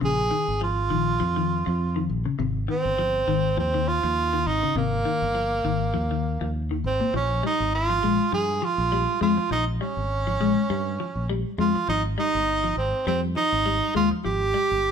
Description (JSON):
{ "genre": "afrobeat", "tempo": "101 BPM", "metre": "4/4", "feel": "swing 56% on 16ths", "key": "Bb dorian", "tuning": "A4 = 439 Hz", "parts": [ { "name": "edgy tenor saxophone", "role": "melody", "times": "0.0-14.9 s", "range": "Bb3 to Ab4", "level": "-24 LUFS", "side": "right 3 dB", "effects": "none" }, { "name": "clean electric guitar", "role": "arpeggios", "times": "0.0-14.7 s", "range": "Bb2 to Ab3", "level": "-28 LUFS", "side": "left 6 dB", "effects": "phaser" }, { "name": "fingered electric bass", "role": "bass", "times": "0.0-14.9 s", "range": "G1 to G2", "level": "-28 LUFS", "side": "equal", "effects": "none" } ], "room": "moderate large studio reverb, RT60 1.0 s", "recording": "band playing live in one room", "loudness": "-22 LUFS", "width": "side -7 dB against mid", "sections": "0.0-7.1 A section; 7.1-14.9 B section", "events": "none", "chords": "0.0 Bbm7; 2.4 Abmaj9; 7.1 Bbm7; 11.9 Ab5" }